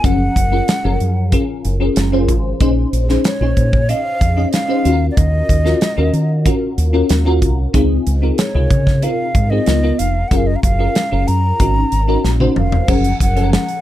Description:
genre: polished 1980s jazz-funk pop.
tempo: 93 BPM.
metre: 4/4.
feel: straight.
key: unclear.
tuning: A4 = 438 Hz.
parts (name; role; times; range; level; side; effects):
breathy mellow silver concert flute; melody; 0.0-13.8 s; Db5 to Bb5; -21 LUFS; equal; none.
bell-like FM electric piano; accompaniment; 0.0-13.8 s; C3 to Eb5; -19 LUFS; left 1 dB; phaser, ensemble chorus.
fingered electric bass; bass; 0.0-13.6 s; F1 to Eb3; -16 LUFS; equal; none.
modern studio drum kit; drums; 0.0-13.8 s; crash cymbal, hi-hat, kick drum, snare drum, toms; -18 LUFS; equal; none.
room: little or no reverb.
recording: none.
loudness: -13 LUFS.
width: side -13 dB against mid.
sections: 0.0-12.9 A section.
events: drum fill 12.2-12.9.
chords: 0.0 Gbmaj9; 2.6 Bbm11; 4.9 Ebm9; 7.7 Dbmaj9; 9.7 Db13; 10.3 Gbmaj9; 11.6 Ab9sus4; 12.9 Gbmaj7.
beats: | 0.04 0.68 1.32 1.97 | 2.61 3.25 3.89 4.53 | 5.17 5.82 6.46 7.10 | 7.74 8.38 9.03 9.67 | 10.31 10.96 11.60 12.24 | 12.88 13.53.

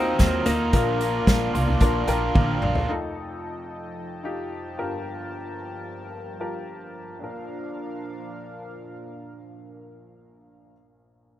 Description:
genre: piano-driven pop.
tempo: 111 BPM.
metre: 4/4.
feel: straight.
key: Bb major.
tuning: A4 = 440 Hz.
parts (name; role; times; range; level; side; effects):
direct-recorded clean electric guitar; melody; 0.0-2.3 s; Bb3 to C4; -27 LUFS; left 2 dB; none.
clear upright piano; accompaniment; 0.0-11.4 s; F1 to C6; -31 LUFS; left 2 dB; none.
chorused pulse-width pad; sustained chords; 0.0-10.7 s; F2 to Eb6; -36 LUFS; left 1 dB; none.
cranked stack guitar; riff; 0.0-2.9 s; Bb2 to F4; -27 LUFS; right 3 dB; overdrive.
upright bass; bass; 0.0-2.8 s; Bb1 to Eb2; -26 LUFS; equal; none.
unplugged drum kit; drums; 0.2-2.9 s; hi-hat, kick drum, snare drum, toms; -22 LUFS; equal; none.
room: light reverb.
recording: rough home demo mix.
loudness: -23 LUFS.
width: side -13 dB against mid.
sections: 0.0-2.9 A section; 2.9-7.2 B section; 7.2-11.4 C section.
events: upright piano fill 1.3-2.9; drum fill 2.4-2.9.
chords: 0.0 Ebmadd9; 0.7 Bb; 2.9 F7; 4.8 Gm7; 7.2 Bb.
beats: 0.20 | 0.73 1.27 1.81 2.35 | 2.89 3.43 3.97 4.51 | 5.05 5.60 6.14 6.68 | 7.22 7.76 8.30 8.84 | 9.38 9.92 10.46 11.00.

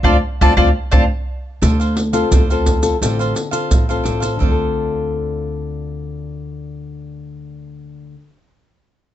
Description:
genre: samba and choro.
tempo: 86 BPM.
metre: 4/4.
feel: straight.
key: D minor.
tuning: A4 = 440 Hz.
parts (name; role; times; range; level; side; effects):
mandolin; melody; 0.0-1.0 s; D5 to A5; -19 LUFS; equal; plate reverb.
cavaquinho; accompaniment; 0.0-8.2 s; D4 to F5; -25 LUFS; right 6 dB; none.
nylon-string guitar; accompaniment; 0.0-8.3 s; A2 to A4; -22 LUFS; left 6 dB; none.
upright bass; bass; 0.0-8.1 s; A1 to D2; -20 LUFS; equal; none.
surdo, maracas and pandeiro; percussion; 0.0-4.6 s; none; -18 LUFS; right 1 dB; none.
room: moderate small room reverb, RT60 0.5 s.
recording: nothing above 8.0 kHz.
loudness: -15 LUFS.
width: side -12 dB against mid.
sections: 0.0-1.6 A section; 1.6-4.4 B section; 4.4-7.2 C section.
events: band accent 0.0-1.6; drum fill 1.1-1.6.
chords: 0.0 Dm7.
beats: 0.23 0.93 | 1.62 2.32 3.02 3.72 | 4.41 5.11 5.81 6.51.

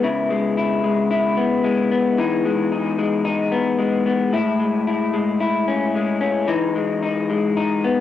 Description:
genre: indie pop.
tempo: 112 BPM.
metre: 4/4.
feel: straight.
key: E major.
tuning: A4 = 440 Hz.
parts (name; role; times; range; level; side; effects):
electric guitar through a small old amp; solo; 0.0-8.0 s; A2 to E4; -18 LUFS; left 3 dB; lush chorus, vibrato effect, cassette tape.
room: wet small room reverb, RT60 0.5 s.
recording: home recording on cassette.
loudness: -18 LUFS.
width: side -11 dB against mid.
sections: 0.0-8.0 A section.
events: none.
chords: 0.0 C#m7; 2.2 Emaj7; 4.3 Amaj7; 6.5 Emaj7.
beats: | 0.03 0.57 1.11 1.65 | 2.19 2.72 3.26 3.80 | 4.34 4.87 5.41 5.95 | 6.49 7.02 7.56.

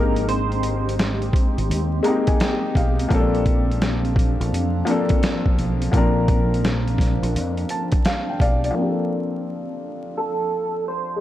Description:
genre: lo-fi hip hop.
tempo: 85 BPM.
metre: 4/4.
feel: swing 65% on 16ths.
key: Bb major.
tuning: A4 = 440 Hz.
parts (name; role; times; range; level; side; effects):
electric guitar through a small old amp; melody; 0.0-2.7, 10.2-11.2 s; A4 to C5; -26 LUFS; right 3 dB; analog chorus, low-pass filter, tape echo.
felt-muted upright piano; accompaniment; 0.0-11.2 s; F3 to Bb5; -24 LUFS; left 2 dB; low-pass filter.
granular cloud pad; sustained chords; 0.0-8.7 s; F3 to G4; -28 LUFS; right 1 dB; built-in reverb, low-pass filter.
deep dub fingered electric bass; bass; 0.0-8.7 s; Ab1 to F2; -24 LUFS; equal; none.
boom bap sampler-style drum kit; drums; 0.2-8.8 s; hi-hat, kick drum, snare drum; -21 LUFS; equal; none.
room: light reverb.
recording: vinyl crackle.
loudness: -18 LUFS.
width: side -13 dB against mid.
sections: 0.0-8.8 A section; 8.8-11.2 B section.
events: felt piano fill 1.7-3.1, 7.3-8.8; filter sweep 8.8-11.2.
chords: 0.0 Abmaj9; 3.1 Bbmaj9.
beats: | 0.28 0.99 1.69 2.40 | 3.11 3.81 4.52 5.22 | 5.93 6.63 7.34 8.05 | 8.75 9.46 10.16 10.87.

